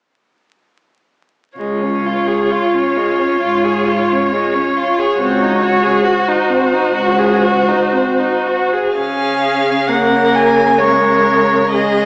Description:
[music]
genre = classical, slow romantic movement for string quartet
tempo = 54-71 BPM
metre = 4/4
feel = rubato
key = Db major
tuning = A4 = 438 Hz
[part]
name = warm violin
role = melody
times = 1.6-12.1 s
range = C5 to Ab5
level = -20 LUFS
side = equal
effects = none
[part]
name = warm violin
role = second line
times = 1.6-12.1 s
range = Ab3 to Bb4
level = -19 LUFS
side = equal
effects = none
[part]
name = clear viola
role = accompaniment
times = 1.6-12.1 s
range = Ab3 to Gb4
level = -21 LUFS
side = equal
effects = none
[part]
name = rich cello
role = bass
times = 1.6-12.1 s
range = Db2 to Db3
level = -24 LUFS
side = equal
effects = none
[sound]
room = wet recital hall reverb, RT60 1.5 s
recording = heard from further back in the room, vinyl crackle, small speaker sound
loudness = -14 LUFS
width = mono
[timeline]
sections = 1.6-9.0 A section; 9.0-12.1 B section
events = none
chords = 1.6 Db; 5.2 Ab7/Db (rootless); 9.0 Db

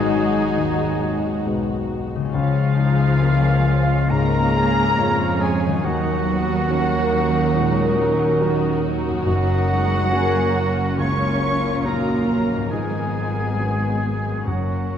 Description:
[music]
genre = cinematic, emotional film score for orchestra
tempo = 69 BPM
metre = 4/4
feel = rubato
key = F# major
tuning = A4 = 440 Hz
[part]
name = muted studio violin section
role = melody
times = 0.0-15.0 s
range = E#5 to C#6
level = -30 LUFS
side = left 2 dB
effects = none
[part]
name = muted studio violin section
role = second line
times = 0.0-15.0 s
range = A#3 to C#5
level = -29 LUFS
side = left 1 dB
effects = none
[part]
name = silver concert flute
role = second line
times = 0.0-15.0 s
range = E#5 to C#6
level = -29 LUFS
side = left 1 dB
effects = none
[part]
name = warm oboe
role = second line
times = 0.0-15.0 s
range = E#4 to C#5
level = -30 LUFS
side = right 2 dB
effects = none
[part]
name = dark grand piano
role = accompaniment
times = 0.0-15.0 s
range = C#2 to A#4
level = -25 LUFS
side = left 2 dB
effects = none
[part]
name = muted studio viola section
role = accompaniment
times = 0.0-15.0 s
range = D#3 to D#4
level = -28 LUFS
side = equal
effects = none
[part]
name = warm French horn section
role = sustained chords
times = 0.0-15.0 s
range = F#3 to A#4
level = -27 LUFS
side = left 2 dB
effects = none
[part]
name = concert harp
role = arpeggios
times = 0.0-15.0 s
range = F#2 to A#4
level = -26 LUFS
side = left 5 dB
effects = none
[part]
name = muted studio double bass section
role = bass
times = 0.0-15.0 s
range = F#1 to E#2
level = -25 LUFS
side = right 4 dB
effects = none
[part]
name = muted symphonic cello section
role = bass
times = 0.0-15.0 s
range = E#3 to C#4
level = -28 LUFS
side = right 3 dB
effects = none
[part]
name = timpani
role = percussion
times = 9.3-15.0 s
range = F#2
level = -28 LUFS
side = right 1 dB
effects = none
[sound]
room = wet scoring stage reverb, RT60 1.8 s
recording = nothing above 10.3 kHz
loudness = -17 LUFS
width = side -8 dB against mid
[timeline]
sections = 0.0-15.0 A section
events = none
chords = 0.0 G#m7; 2.3 C#; 5.8 D#m7; 9.3 F#; 12.7 G#m7; 14.5 F#

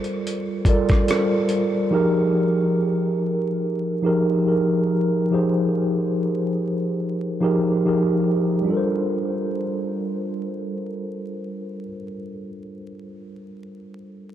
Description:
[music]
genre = lo-fi hip hop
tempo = 71 BPM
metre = 4/4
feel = swing 55% on 16ths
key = G phrygian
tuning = A4 = 439 Hz
[part]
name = mellow tine electric piano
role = accompaniment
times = 0.0-14.3 s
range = F3 to D5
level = -21 LUFS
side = equal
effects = medium stereo tremolo, cassette tape, low-pass filter
[part]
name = dusty soul sampler-style drum kit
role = drums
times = 0.0-1.7 s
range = hi-hat, kick drum, rim click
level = -22 LUFS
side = equal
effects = none
[sound]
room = moderate huge ambient reverb, RT60 4.2 s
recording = dreamy mix soaked in reverb, vinyl crackle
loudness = -19 LUFS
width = side -11 dB against mid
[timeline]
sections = 0.0-8.7 A section; 8.7-12.1 B section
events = none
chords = 0.0 Gm11; 1.9 Fm11; 8.7 Gm11

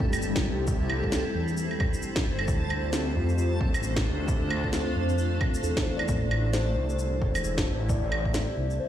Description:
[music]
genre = future garage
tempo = 133 BPM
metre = 4/4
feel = swing 60% on 16ths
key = D minor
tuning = A4 = 439 Hz
[part]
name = mellow tine electric piano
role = accompaniment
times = 0.0-8.9 s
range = A3 to D5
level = -36 LUFS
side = left 2 dB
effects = medium stereo tremolo, sidechain pumping, ping-pong delay
[part]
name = granular cloud pad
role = sustained chords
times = 0.0-8.8 s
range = G3 to G5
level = -33 LUFS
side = equal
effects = built-in reverb, sidechain pumping
[part]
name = swelling detuned saw bass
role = bass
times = 0.0-8.8 s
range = E1 to F2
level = -28 LUFS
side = equal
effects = sidechain pumping
[part]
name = electronic kick drum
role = drums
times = 0.0-8.3 s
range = none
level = -29 LUFS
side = equal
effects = studio reverb
[part]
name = backwards swelling texture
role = texture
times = 0.0-8.8 s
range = A4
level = -39 LUFS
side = equal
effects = built-in reverb
[part]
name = electronic shaker, claves and snare drum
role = drums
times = 0.1-8.8 s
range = none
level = -32 LUFS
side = right 1 dB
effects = overdrive, studio reverb
[sound]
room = little or no reverb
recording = played on a big sound system in a bare room, stone room reverb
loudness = -24 LUFS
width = side -11 dB against mid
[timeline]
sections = 0.0-8.9 A section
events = none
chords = 0.0 C; 2.5 Dm7; 6.1 Am7

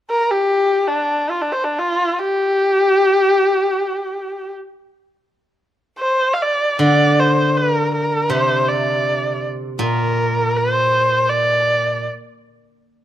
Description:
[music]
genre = chinese traditional, Chinese chamber ensemble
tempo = free time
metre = none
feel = none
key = unclear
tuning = A4 = 440 Hz
[part]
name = dark erhu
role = melody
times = 0.1-12.1 s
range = D4 to F5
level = -16 LUFS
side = equal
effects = none
[part]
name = steel-string zither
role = accompaniment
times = 6.8-12.1 s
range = Bb2 to D3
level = -19 LUFS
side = equal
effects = none
[sound]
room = light reverb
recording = close, detailed microphones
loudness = -15 LUFS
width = side -12 dB against mid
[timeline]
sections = 0.0-6.8 A section; 6.8-13.0 B section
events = none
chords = none

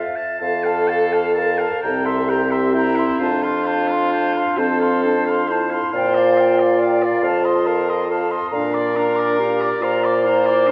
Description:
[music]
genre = classical, slow romantic movement for wind quintet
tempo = 37-47 BPM (dotted quarters)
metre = 6/8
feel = rubato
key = F major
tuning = A4 = 441 Hz
[part]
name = hollow concert flute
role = melody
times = 0.0-10.7 s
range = E5 to D6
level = -27 LUFS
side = equal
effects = none
[part]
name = clear oboe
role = second line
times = 0.0-10.7 s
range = C5 to A5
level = -28 LUFS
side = equal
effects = none
[part]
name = clear French horn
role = accompaniment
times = 0.0-10.7 s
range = E4 to D5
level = -23 LUFS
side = equal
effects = none
[part]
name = warm bassoon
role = bass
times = 0.0-10.7 s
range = C2 to Bb2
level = -24 LUFS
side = equal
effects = none
[part]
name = dark clarinet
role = accompaniment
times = 1.8-10.7 s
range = C4 to G4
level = -26 LUFS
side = equal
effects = none
[sound]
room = wet scoring stage reverb, RT60 1.9 s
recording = heard from further back in the room, nothing above 7.9 kHz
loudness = -19 LUFS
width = mono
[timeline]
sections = 0.4-10.7 A section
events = none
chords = 0.4 F; 1.8 C7; 3.2 F; 5.9 Bb6; 7.2 F7; 8.5 Bb

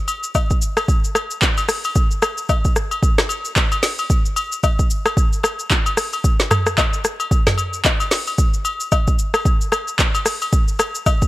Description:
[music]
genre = amapiano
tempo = 112 BPM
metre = 4/4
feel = swing 58% on 16ths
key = none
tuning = none
[part]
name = afro-pop drum kit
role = drums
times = 0.1-11.3 s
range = handclaps, hi-hat, kick drum, rim click, shaker, snare drum, toms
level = -17 LUFS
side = equal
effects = none
[part]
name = agogo bells and woodblock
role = percussion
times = 0.1-11.2 s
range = none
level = -23 LUFS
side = left 3 dB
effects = none
[sound]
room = little or no reverb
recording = none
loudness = -16 LUFS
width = side -17 dB against mid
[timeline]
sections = 0.0-11.3 A section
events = none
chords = none

